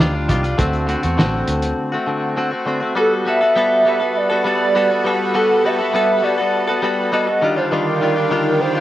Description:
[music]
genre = indie pop, bedroom pop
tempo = 101 BPM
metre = 4/4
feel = straight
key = G major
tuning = A4 = 439 Hz
[part]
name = direct-recorded clean electric guitar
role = accompaniment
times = 0.0-8.8 s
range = D3 to A4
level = -19 LUFS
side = left 1 dB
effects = wide subtle chorus, vibrato effect
[part]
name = vintage muted fingered electric bass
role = bass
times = 0.0-1.7 s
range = A1 to E2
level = -21 LUFS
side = equal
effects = none
[part]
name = cloth-damped thuddy drum kit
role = drums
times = 0.0-1.8 s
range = hi-hat, kick drum, snare drum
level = -20 LUFS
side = equal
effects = none
[part]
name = hollow clarinet-like synth lead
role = melody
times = 3.0-8.8 s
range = A4 to E5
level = -17 LUFS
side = right 1 dB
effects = lush chorus, tape echo
[part]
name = lush unison pad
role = sustained chords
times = 3.0-8.8 s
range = D3 to B4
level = -24 LUFS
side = right 2 dB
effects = chorus
[sound]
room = light reverb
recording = home recording on cassette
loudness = -15 LUFS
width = side -14 dB against mid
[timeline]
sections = 0.0-3.0 A section; 3.0-8.8 B section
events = break 1.8-3.0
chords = 0.0 Ebmaj9; 0.6 D7; 3.0 Gmaj9; 7.4 Ebmaj9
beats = 0.00 | 0.59 1.18 1.78 2.37 | 2.97 3.56 4.15 4.75 | 5.34 5.94 6.53 7.12 | 7.72 8.31

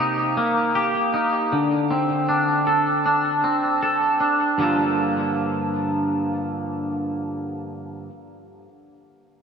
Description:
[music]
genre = rock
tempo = 78 BPM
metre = 4/4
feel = straight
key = G minor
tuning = A4 = 440 Hz
[part]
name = twangy electric guitar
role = arpeggios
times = 0.0-8.1 s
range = G2 to A4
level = -20 LUFS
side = equal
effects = analog chorus, digital delay, slapback echo
[sound]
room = wet lush hall reverb, RT60 3.0 s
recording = big arena sound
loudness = -19 LUFS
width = side -6 dB against mid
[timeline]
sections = 0.0-4.6 A section; 4.6-7.7 B section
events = none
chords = 0.0 Cm7; 1.5 D5; 4.6 Gm9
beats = 0.75 | 1.52 2.28 3.05 3.82 | 4.59 5.36 6.12 6.89

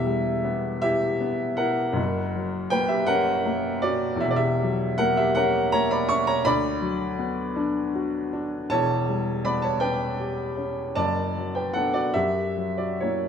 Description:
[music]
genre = classical, romantic nocturne for solo piano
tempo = 53 BPM (dotted quarters)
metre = 6/8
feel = uneven beats, rubato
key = B minor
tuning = A4 = 442 Hz
[part]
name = warm upright piano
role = solo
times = 0.0-13.3 s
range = E1 to C#6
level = -22 LUFS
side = equal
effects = none
[sound]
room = wet recital hall reverb, RT60 1.7 s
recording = none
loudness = -22 LUFS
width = side -7 dB against mid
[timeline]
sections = 0.0-13.3 A section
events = none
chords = 0.0 Em; 2.0 F#; 4.2 F#7/E; 6.5 Bm/D; 8.7 C#m7b5/E; 11.0 Bm/F#; 12.1 F#7b9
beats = 0.83 | 1.98 3.09 | 4.22 5.37 | 6.46 7.56 | 8.71 9.81 | 10.96 12.14

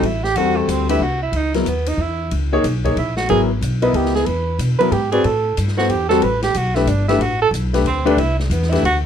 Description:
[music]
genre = modal jazz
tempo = 184 BPM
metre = 3/4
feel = swing 63% on 8ths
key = unclear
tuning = A4 = 440 Hz
[part]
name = warm tenor saxophone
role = second line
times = 0.0-9.0 s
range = G3 to B4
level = -20 LUFS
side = right 4 dB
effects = none
[part]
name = warm concert grand piano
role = accompaniment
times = 0.0-8.8 s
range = F#3 to D#5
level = -19 LUFS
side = left 4 dB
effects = none
[part]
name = upright bass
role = bass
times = 0.0-9.1 s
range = G1 to B2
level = -20 LUFS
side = equal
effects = none
[part]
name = open jazz drum kit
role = drums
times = 0.0-8.9 s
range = hi-hat, kick drum, ride cymbal, snare drum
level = -29 LUFS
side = left 4 dB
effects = none
[sound]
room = light reverb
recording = dark, warm production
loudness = -16 LUFS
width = side -8 dB against mid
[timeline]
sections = 0.0-9.1 A section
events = tenor saxophone solo 0.0-9.1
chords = 0.0 Am11; 1.3 C#m11; 5.2 Am11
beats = 0.03 | 0.35 0.68 1.01 | 1.33 1.66 1.98 | 2.31 2.64 2.96 | 3.29 3.61 3.94 | 4.27 4.59 4.92 | 5.25 5.57 5.90 | 6.22 6.55 6.88 | 7.20 7.53 7.86 | 8.18 8.51 8.84

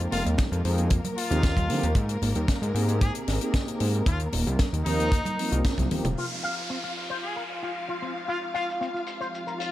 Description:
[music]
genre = nu-disco, nu disco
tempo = 114 BPM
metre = 4/4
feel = straight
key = F minor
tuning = A4 = 440 Hz
[part]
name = mellow synth brass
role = accompaniment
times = 0.0-9.7 s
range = F3 to C5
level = -33 LUFS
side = right 1 dB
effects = chorus, sidechain pumping, dub echo
[part]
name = dark studio string section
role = sustained chords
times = 0.0-9.7 s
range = Bb3 to F5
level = -34 LUFS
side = left 1 dB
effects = sidechain pumping
[part]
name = fat analog bass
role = bass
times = 0.0-6.1 s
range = Eb1 to D3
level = -26 LUFS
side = equal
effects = tube saturation
[part]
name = tight funk drum kit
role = drums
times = 0.0-9.7 s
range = hi-hat, shaker, snare drum, toms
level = -34 LUFS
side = left 2 dB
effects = low-pass filter on hats, low-pass filter on toms, low-pass filter on snare, low-pass filter on perc, low-pass filter on room
[part]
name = brilliant trumpet section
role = melody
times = 0.1-9.7 s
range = Eb4 to Ab4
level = -34 LUFS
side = left 1 dB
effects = analog delay
[part]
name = congas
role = percussion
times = 0.1-6.0 s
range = none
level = -35 LUFS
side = right 2 dB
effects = none
[part]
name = kick drum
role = drums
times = 0.4-5.9 s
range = none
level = -25 LUFS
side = equal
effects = none
[part]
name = electric guitar with an envelope filter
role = riff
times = 6.2-9.5 s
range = C4 to F5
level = -33 LUFS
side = left 3 dB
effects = wide subtle chorus, low-pass filter, dub echo
[part]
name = downlifter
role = sound effects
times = 6.2-9.7 s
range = none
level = -36 LUFS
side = equal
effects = none
[sound]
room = light reverb, small room ambience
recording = echo-heavy mix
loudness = -24 LUFS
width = side -14 dB against mid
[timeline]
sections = 0.0-6.2 A section; 6.2-9.7 B section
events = band accent 5.6; drum fill 5.9; filter sweep on drum 6.2-9.7; filter sweep on analog polysynth 6.2-9.7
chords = 0.0 Fm9; 2.0 Abmaj9; 4.1 Ebsus2; 6.2 Fm9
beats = 0.39 0.91 1.44 | 1.96 2.49 3.02 3.54 | 4.07 4.60 5.12 5.65 | 6.17 6.70 7.23 7.75 | 8.28 8.81 9.33

